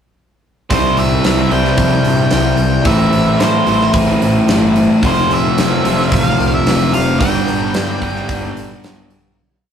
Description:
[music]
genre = rock, shoegaze and dream pop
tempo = 111 BPM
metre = 4/4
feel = straight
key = G mixolydian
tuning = A4 = 440 Hz
[part]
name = octave-fuzz lead guitar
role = melody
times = 0.7-8.8 s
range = C5 to G5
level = -20 LUFS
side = right 1 dB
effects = distortion
[part]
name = phased analog pad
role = sustained chords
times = 0.7-9.4 s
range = E4 to D6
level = -29 LUFS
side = right 1 dB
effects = none
[part]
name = electric guitar through a small old amp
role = arpeggios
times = 0.7-9.4 s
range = F3 to A4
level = -28 LUFS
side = left 1 dB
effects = none
[part]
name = crunchy overdriven guitar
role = riff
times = 0.7-9.4 s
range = F2 to G4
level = -17 LUFS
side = right 3 dB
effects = none
[part]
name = thick fuzz guitar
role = riff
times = 0.7-9.4 s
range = F2 to C4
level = -16 LUFS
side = left 3 dB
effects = distortion
[part]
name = overdriven picked electric bass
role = bass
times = 0.7-9.2 s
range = F1 to A2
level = -22 LUFS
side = right 1 dB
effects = none
[part]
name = huge arena drum kit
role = drums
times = 0.7-9.2 s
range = hi-hat, kick drum, snare drum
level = -18 LUFS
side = equal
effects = none
[sound]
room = wet small room reverb, RT60 0.5 s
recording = rough rehearsal-room recording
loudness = -11 LUFS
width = side -8 dB against mid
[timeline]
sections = 0.7-9.4 verse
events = fade-out 7.2-9.4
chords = 0.7 C; 2.9 Amadd9; 5.0 F6; 7.2 G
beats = | 0.71 1.25 1.79 2.33 | 2.87 3.41 3.96 4.50 | 5.04 5.58 6.12 6.67 | 7.21 7.75 8.29 8.83

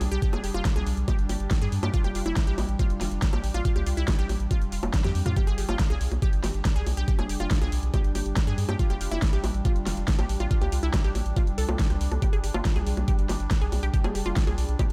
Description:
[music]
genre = psychedelic trance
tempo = 140 BPM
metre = 4/4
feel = straight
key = unclear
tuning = A4 = 440 Hz
[part]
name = evolving wavetable pad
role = sustained chords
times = 0.0-14.9 s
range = G3 to D4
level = -38 LUFS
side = equal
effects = chorus, built-in reverb, sidechain pumping
[part]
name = round analog bass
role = bass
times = 0.0-14.9 s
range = F1 to G2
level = -30 LUFS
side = equal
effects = none
[part]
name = big-room dance drum kit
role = drums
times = 0.0-14.9 s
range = bongos, hi-hat, snare drum, toms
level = -34 LUFS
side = equal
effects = overdrive, small room ambience
[part]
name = unison pluck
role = riff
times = 0.1-14.8 s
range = E4 to C5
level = -37 LUFS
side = equal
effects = sidechain pumping, tape echo
[part]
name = electronic kick drum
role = drums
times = 0.2-14.9 s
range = none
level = -27 LUFS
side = equal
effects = overdrive, small room ambience
[sound]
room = digital ambience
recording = none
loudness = -26 LUFS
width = mono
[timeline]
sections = 0.0-14.9 A section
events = drum fill 4.9-5.4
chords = 0.0 G5; 1.9 F5; 5.4 G5; 8.8 F5; 12.2 G5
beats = | 0.22 0.65 1.08 1.51 | 1.94 2.37 2.79 3.22 | 3.65 4.08 4.51 4.94 | 5.37 5.79 6.22 6.65 | 7.08 7.51 7.94 8.37 | 8.79 9.22 9.65 10.08 | 10.51 10.94 11.37 11.79 | 12.22 12.65 13.08 13.51 | 13.94 14.37 14.79

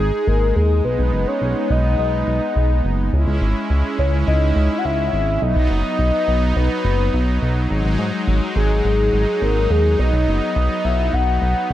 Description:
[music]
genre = synthwave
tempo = 105 BPM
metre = 4/4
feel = straight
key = unclear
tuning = A4 = 442 Hz
[part]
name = soft octave-layered synth lead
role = melody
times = 0.0-11.7 s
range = G#4 to F#5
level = -21 LUFS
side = left 2 dB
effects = chorus, phaser, digital delay
[part]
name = brassy analog pad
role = sustained chords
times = 0.0-11.7 s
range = F#3 to G#4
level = -23 LUFS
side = right 1 dB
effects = chorus
[part]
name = chorused synth bass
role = bass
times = 0.0-11.7 s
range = F#1 to G#2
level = -18 LUFS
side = equal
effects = none
[sound]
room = moderate lush hall reverb, RT60 2.5 s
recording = dark, warm production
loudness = -16 LUFS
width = side -13 dB against mid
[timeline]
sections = 0.0-11.7 A section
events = none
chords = 0.0 G#5; 0.8 B; 3.1 C#m; 5.4 B; 7.7 G#5; 10.0 B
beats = 0.28 | 0.85 1.42 1.99 2.56 | 3.13 3.71 4.28 4.85 | 5.42 5.99 6.56 7.13 | 7.71 8.28 8.85 9.42 | 9.99 10.56 11.13 11.71

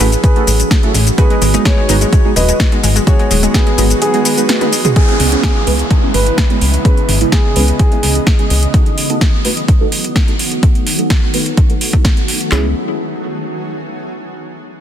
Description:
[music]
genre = progressive house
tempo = 127 BPM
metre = 4/4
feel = straight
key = C# minor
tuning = A4 = 440 Hz
[part]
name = dark concert grand piano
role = melody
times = 0.0-8.7 s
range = B3 to D#5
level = -19 LUFS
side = equal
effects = sidechain pumping, ping-pong delay
[part]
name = shimmering ambient pad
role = sustained chords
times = 0.0-12.7 s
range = C#3 to D#5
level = -21 LUFS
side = equal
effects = chorus, built-in reverb, sidechain pumping
[part]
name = analog pluck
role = arpeggios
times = 0.0-3.9, 12.5-12.7 s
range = G#3 to F#4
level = -23 LUFS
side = left 5 dB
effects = chorus, vintage 12-bit sampler grit, sidechain pumping, ping-pong delay
[part]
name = deep mellow chord stab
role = stabs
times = 0.0-12.7 s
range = G#3 to B4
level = -20 LUFS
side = right 4 dB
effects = chorus, phaser, sidechain pumping, ping-pong delay
[part]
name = plucky analog bass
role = bass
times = 0.0-8.7, 12.5-12.7 s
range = D#1 to C#2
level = -14 LUFS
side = equal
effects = sidechain pumping
[part]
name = deep house drum kit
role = drums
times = 0.0-12.5 s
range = hi-hat, shaker, snare drum, toms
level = -18 LUFS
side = equal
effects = overdrive, sidechain pumping on hats, sidechain pumping on perc, sidechain pumping on toms
[part]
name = deep house drum kit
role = drums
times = 0.2-12.6 s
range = handclaps, kick drum, snare drum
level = -12 LUFS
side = equal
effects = overdrive
[part]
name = downlifter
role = sound effects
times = 5.0-8.7 s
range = none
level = -23 LUFS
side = right 2 dB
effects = none
[sound]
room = light reverb, digital ambience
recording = dense, heavily limited modern master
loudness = -10 LUFS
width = side -10 dB against mid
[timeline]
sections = 0.0-5.0 A section; 5.0-12.5 B section; 12.5-14.4 C section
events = drop 0.0-5.0; drum fill 4.5-5.0; filter sweep on synth stab 5.0-12.5; filter sweep on ambient pad 5.0-12.5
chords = 0.0 A6; 1.2 G#m7; 5.0 C#m7; 8.7 B7; 12.5 C#m7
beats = 0.24 0.71 | 1.18 1.65 2.13 2.60 | 3.07 3.54 4.02 4.49 | 4.96 5.43 5.91 6.38 | 6.85 7.32 7.80 8.27 | 8.74 9.21 9.69 10.16 | 10.63 11.10 11.57 12.05 | 12.52

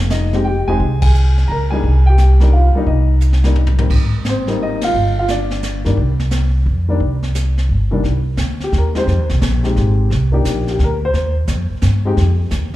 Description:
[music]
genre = jazz piano trio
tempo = 174 BPM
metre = 3/4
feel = swing 65% on 8ths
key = C minor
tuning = A4 = 440 Hz
[part]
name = upright bass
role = bass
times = 0.0-12.8 s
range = E1 to G2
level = -14 LUFS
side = equal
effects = none
[part]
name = warm baby grand piano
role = melody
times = 0.1-12.2 s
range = C2 to Bb5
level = -20 LUFS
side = left 2 dB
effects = slapback echo
[part]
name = jazz brush drum kit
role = drums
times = 0.1-12.8 s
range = brushed snare drum, crash cymbal, hi-hat, kick drum, ride cymbal, snare drum, toms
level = -22 LUFS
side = equal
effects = none
[sound]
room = studio reverb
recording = live gig heard through the venue's PA, club reverb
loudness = -13 LUFS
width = side -15 dB against mid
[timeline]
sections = 0.0-8.0 A section; 8.0-12.8 B section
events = band accent 1.0, 4.8; drum fill 3.2-3.9; grand piano solo 8.0-12.8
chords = 0.0 Fm7; 1.8 Cm7; 3.9 Abmaj7; 4.9 G5; 6.0 Csus2; 6.7 F13sus4; 7.0 Csus2; 7.7 G5; 8.0 Cm; 9.1 Fm7; 10.1 Cm7; 12.2 F7(no3)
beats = 0.11 0.45 | 0.80 1.14 1.49 | 1.84 2.18 2.53 | 2.87 3.22 3.56 | 3.91 4.25 4.60 | 4.94 5.29 5.63 | 5.98 6.32 6.67 | 7.01 7.36 7.70 | 8.04 8.39 8.73 | 9.08 9.42 9.76 | 10.11 10.45 10.79 | 11.14 11.48 11.83 | 12.17 12.51

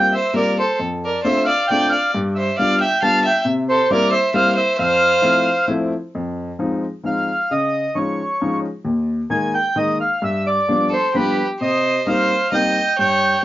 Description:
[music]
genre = musette waltz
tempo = 133 BPM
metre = 3/4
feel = rubato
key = F major, F minor from 6.2 s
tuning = A4 = 440 Hz
[part]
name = mellow accordion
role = melody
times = 0.0-13.4 s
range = B4 to A5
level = -19 LUFS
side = right 1 dB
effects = cassette tape
[part]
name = clear upright piano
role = accompaniment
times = 0.0-13.4 s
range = Eb2 to F4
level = -21 LUFS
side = left 2 dB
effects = cassette tape
[part]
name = bright violin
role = second line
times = 0.2-5.7, 10.9-13.4 s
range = G4 to F5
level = -19 LUFS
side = right 1 dB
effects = cassette tape
[sound]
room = moderate small room reverb, RT60 0.5 s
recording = home recording on cassette, nothing above 7.4 kHz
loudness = -16 LUFS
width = side -14 dB against mid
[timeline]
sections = 0.0-6.2 A section; 6.2-13.4 B section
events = none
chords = 0.0 C7sus4; 0.8 F6; 2.1 G7; 3.5 C7; 4.8 Fmaj7; 6.2 Fm7; 7.5 Dbadd9; 8.9 Ebsus4; 10.2 G7; 11.6 Cm7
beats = 0.35 | 0.80 1.25 1.69 | 2.14 2.58 3.02 | 3.46 3.90 4.34 | 4.79 5.24 5.69 | 6.16 6.62 7.07 | 7.52 7.97 8.42 | 8.87 9.32 9.77 | 10.22 10.68 11.14 | 11.61 12.08 12.54 | 12.99 13.44

